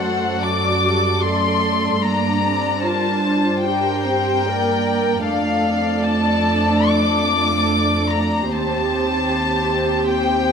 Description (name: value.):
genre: classical, slow romantic movement for string orchestra.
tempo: 66-79 BPM.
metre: 4/4.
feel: rubato.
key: G minor.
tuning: A4 = 440 Hz.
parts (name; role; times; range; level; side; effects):
warm chamber violin section; melody; 0.0-10.5 s; F5 to D6; -21 LUFS; left 5 dB; none.
warm studio violin section; second line; 0.0-10.5 s; G4 to D5; -25 LUFS; left 2 dB; none.
dark symphonic viola section; accompaniment; 0.0-10.5 s; F#3 to Bb4; -21 LUFS; right 3 dB; none.
rich symphonic cello section; bass; 0.0-10.5 s; Eb2 to G2; -24 LUFS; right 2 dB; none.
room: moderate concert hall reverb, RT60 1.7 s.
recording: none.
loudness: -16 LUFS.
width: side -6 dB against mid.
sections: 0.0-10.5 A section.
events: none.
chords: 0.0 D/F#; 2.0 Gm; 5.3 Dm/F; 8.5 Cm/Eb.